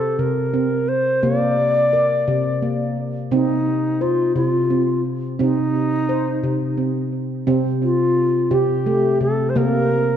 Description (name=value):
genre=world meditative, meditative tuned percussion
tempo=58 BPM (dotted quarters)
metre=6/8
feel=straight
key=C dorian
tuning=A4 = 439 Hz
part: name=low Native American-style wooden flute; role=melody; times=0.0-10.2 s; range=Eb4 to D5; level=-20 LUFS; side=equal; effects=tape echo
part: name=handpan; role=arpeggios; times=0.0-10.2 s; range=C3 to C5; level=-20 LUFS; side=equal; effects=tape echo
room=wet echo chamber reverb, RT60 1.7 s, studio reverb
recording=dark, warm production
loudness=-17 LUFS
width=side -9 dB against mid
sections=0.0-7.5 A section; 7.5-10.2 B section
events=none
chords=0.0 N.C.; 1.2 Bbadd9/C; 3.3 Cm; 7.5 C5; 9.6 N.C.